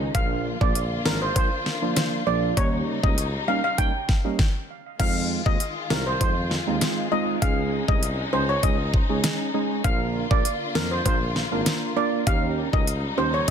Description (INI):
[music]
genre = dancehall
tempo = 99 BPM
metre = 4/4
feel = straight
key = F minor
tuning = A4 = 438 Hz
[part]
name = percussive organ stab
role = accompaniment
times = 0.0-13.5 s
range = Eb3 to Bb4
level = -28 LUFS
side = right 3 dB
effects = chorus
[part]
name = warm studio string section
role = sustained chords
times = 0.0-13.5 s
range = Db3 to F4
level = -32 LUFS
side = left 3 dB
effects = none
[part]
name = warm tuba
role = bass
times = 0.0-13.5 s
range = Ab1 to F2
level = -29 LUFS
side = equal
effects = none
[part]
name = steel pan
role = melody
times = 0.1-13.5 s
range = Bb4 to G5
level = -27 LUFS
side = equal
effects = ping-pong delay
[part]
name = pop drum kit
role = drums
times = 0.1-13.5 s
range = crash cymbal, hi-hat, kick drum, snare drum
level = -24 LUFS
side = equal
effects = none
[sound]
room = light reverb, small room ambience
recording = dense, heavily limited modern master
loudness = -21 LUFS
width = side -8 dB against mid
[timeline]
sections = 0.0-5.0 A section; 5.0-13.5 B section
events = stop 4.4-5.0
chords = 0.1 Bb; 2.6 Eb7; 5.0 Fm7; 7.4 Dbsus2; 9.8 Bb; 12.3 Eb7